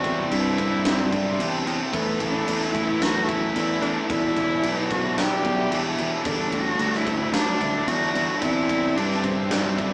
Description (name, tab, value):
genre	post-rock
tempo	111 BPM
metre	4/4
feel	straight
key	unclear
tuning	A4 = 438 Hz
part	warm cello	melody	0.0-9.9 s	B3 to G4	-26 LUFS	equal	none
part	hand-pumped harmonium	sustained chords	0.0-9.9 s	G3 to C6	-34 LUFS	equal	none
part	electric guitar through a small old amp	arpeggios	0.0-9.9 s	E2 to G4	-35 LUFS	equal	none
part	vibraphone with medium hard mallets	arpeggios	0.0-9.9 s	A4 to E5	-33 LUFS	equal	none
part	cranked stack guitar	riff	0.0-9.9 s	E2 to C4	-30 LUFS	left 1 dB	overdrive
part	sludgy distorted guitar	riff	0.0-9.9 s	E2 to C4	-30 LUFS	right 1 dB	overdrive
part	growling fingered electric bass	bass	0.0-9.9 s	B1 to G2	-28 LUFS	equal	overdrive
part	huge arena drum kit	drums	0.0-9.9 s	crash cymbal, kick drum, snare drum	-27 LUFS	equal	none
room	moderate large studio reverb, RT60 1.3 s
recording	band playing live in one room, small speaker sound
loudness	-20 LUFS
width	side -29 dB against mid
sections	0.0-9.9 A section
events	none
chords	0.0 Cadd9/E; 1.9 Asus2/E; 4.1 Em7; 6.3 Gsus2; 8.4 Cadd9/E